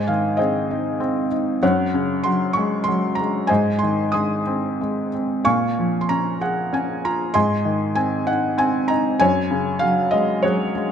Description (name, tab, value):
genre	classical, lyrical solo piano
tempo	96 BPM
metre	3/4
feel	rubato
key	unclear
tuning	A4 = 441 Hz
part	felt-muted upright piano	solo	0.0-10.9 s	Gb2 to Eb6	-18 LUFS	equal	none
room	moderate concert hall reverb, RT60 2.1 s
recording	close, detailed microphones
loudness	-18 LUFS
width	side -8 dB against mid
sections	0.0-10.9 A section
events	none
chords	0.0 Ab; 1.6 Gbsus2; 3.5 Ab; 5.4 Bbm7; 7.3 Ab; 9.2 Gbsus2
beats	0.39 1.00 | 1.62 2.24 2.87 | 3.50 4.13 4.79 | 5.45 6.09 6.72 | 7.34 7.96 8.58 | 9.21 9.82 10.44